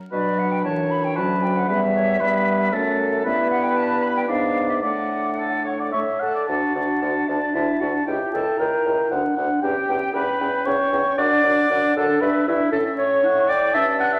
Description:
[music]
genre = quick classical-period movement for wind quintet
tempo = 116 BPM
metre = 3/4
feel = rubato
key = D major from 3.2 s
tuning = A4 = 440 Hz
[part]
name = bright silver concert flute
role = melody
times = 0.1-14.2 s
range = D5 to F#6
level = -29 LUFS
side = equal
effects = none
[part]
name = warm oboe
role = second line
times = 0.1-14.2 s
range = A4 to A5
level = -27 LUFS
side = equal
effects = none
[part]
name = mellow French horn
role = accompaniment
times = 0.1-14.1 s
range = E3 to E4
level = -29 LUFS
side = equal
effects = none
[part]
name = mellow clarinet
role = accompaniment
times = 0.1-14.2 s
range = B3 to F#5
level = -26 LUFS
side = equal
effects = none
[part]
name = clear bassoon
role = bass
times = 0.1-14.2 s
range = C#2 to B2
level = -29 LUFS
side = equal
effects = none
[sound]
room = wet recital hall reverb, RT60 1.4 s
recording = vinyl crackle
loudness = -21 LUFS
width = mono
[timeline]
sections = 0.0-6.5 A section; 6.5-14.2 B section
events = none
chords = 0.1 Bm; 1.2 Bm/D; 1.7 C#m7b5/E; 3.2 Em/G; 4.3 G#dim7; 4.8 D/A; 5.9 A; 6.5 D; 8.1 C#dim7; 9.1 D; 9.6 C#dim/E; 11.2 D/F#; 12.2 Em7/G; 12.7 A

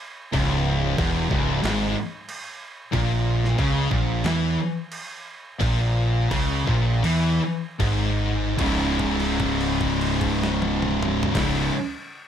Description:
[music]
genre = stoner and doom metal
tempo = 74-92 BPM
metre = 4/4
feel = straight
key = C# dorian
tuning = A4 = 437 Hz
[part]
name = heavy high-gain guitar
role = riff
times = 0.3-11.7 s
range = C#2 to E4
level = -28 LUFS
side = equal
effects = distortion
[part]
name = thick fuzz guitar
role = riff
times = 0.3-11.7 s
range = C#2 to E3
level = -26 LUFS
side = left 7 dB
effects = distortion
[part]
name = thick fuzz guitar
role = riff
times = 0.3-11.7 s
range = C#2 to E3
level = -26 LUFS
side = right 6 dB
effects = distortion
[part]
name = fuzz fingered electric bass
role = bass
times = 0.3-11.7 s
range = C#1 to E2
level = -28 LUFS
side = equal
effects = overdrive
[part]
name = boom bap sampler-style drum kit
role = drums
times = 0.3-11.5 s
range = crash cymbal, kick drum, snare drum, toms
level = -30 LUFS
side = equal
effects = overdrive
[sound]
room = light reverb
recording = none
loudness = -20 LUFS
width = side -9 dB against mid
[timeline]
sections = 0.0-8.6 A section; 8.6-11.8 B section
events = slowing down 2.9-8.6; kick and snare drop out 7.0-8.6; held note 8.6-11.3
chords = 0.0 C#m; 2.9 A#m7b5; 8.6 C#m

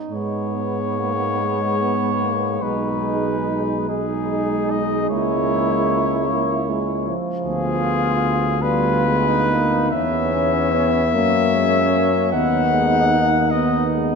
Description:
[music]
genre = classical, hymn-like piece for brass band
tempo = 44-52 BPM (dotted quarters)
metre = 6/8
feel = rubato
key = G# minor, B major from 9.9 s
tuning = A4 = 439 Hz
[part]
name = mellow flugelhorn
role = second line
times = 0.0-14.2 s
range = B3 to F4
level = -24 LUFS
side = right 5 dB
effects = none
[part]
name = warm cornet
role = melody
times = 0.1-13.9 s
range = G#4 to F#5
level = -22 LUFS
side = left 4 dB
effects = none
[part]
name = mellow trombone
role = accompaniment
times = 0.1-14.2 s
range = E#3 to C#4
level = -26 LUFS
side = right 3 dB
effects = none
[part]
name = warm euphonium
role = accompaniment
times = 0.1-14.2 s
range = G#3 to B3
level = -26 LUFS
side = left 3 dB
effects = none
[part]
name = mellow tuba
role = bass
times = 0.1-14.2 s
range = B1 to G#2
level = -24 LUFS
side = right 1 dB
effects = none
[sound]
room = wet church reverb, RT60 3.7 s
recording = none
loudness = -17 LUFS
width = side -5 dB against mid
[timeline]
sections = 0.1-14.2 A section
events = none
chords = 0.1 G#m; 2.6 G#m/B; 5.1 A#m7b5/C#; 7.4 Ddim7; 9.9 C#m7/E; 11.1 F#; 12.3 B/D#

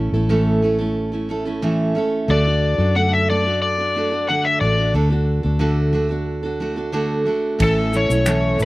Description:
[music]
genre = acoustic pop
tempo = 90 BPM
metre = 4/4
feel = straight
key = unclear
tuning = A4 = 441 Hz
[part]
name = picked steel-string acoustic guitar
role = accompaniment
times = 0.0-8.7 s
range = A2 to A4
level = -20 LUFS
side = right 2 dB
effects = slapback echo
[part]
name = vintage muted fingered electric bass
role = bass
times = 0.0-8.7 s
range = A1 to F#2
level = -21 LUFS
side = equal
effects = none
[part]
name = overdriven slide guitar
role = melody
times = 2.3-8.6 s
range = A4 to F#5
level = -20 LUFS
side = left 2 dB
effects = none
[part]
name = modern studio drum kit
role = drums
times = 7.6-8.7 s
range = crash cymbal, finger snaps, kick drum, shaker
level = -26 LUFS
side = equal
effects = none
[sound]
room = little or no reverb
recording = recorded outdoors, with no room sound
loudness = -17 LUFS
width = side -19 dB against mid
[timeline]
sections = 0.0-7.6 A section; 7.6-8.7 B section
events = none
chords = 0.0 A; 2.3 D; 7.6 A

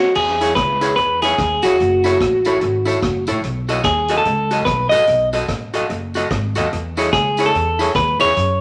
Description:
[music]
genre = ska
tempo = 146 BPM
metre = 4/4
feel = swing 62% on 8ths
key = unclear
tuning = A4 = 440 Hz
[part]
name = clean electric guitar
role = melody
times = 0.0-8.6 s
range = F#4 to D#5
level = -18 LUFS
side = equal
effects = none
[part]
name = upright bass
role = bass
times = 0.2-8.6 s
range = F#1 to F#2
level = -27 LUFS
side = equal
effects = none
[part]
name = street-band drum kit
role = drums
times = 0.2-8.5 s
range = crash cymbal, hi-hat, kick drum, rim click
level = -29 LUFS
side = equal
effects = dub echo
[part]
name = vintage hollow-body jazz guitar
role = accompaniment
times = 0.4-8.3 s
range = E4 to D#5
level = -24 LUFS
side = equal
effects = dub echo
[part]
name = tambourine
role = percussion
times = 0.4-8.3 s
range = none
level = -38 LUFS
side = equal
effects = dub echo
[sound]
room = wet studio reverb, RT60 0.8 s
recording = none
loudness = -17 LUFS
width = mono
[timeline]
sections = 0.2-8.6 A section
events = drum fill 0.0; band accent 0.0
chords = 0.2 E6; 1.8 F#m7; 3.4 B7; 6.7 E6

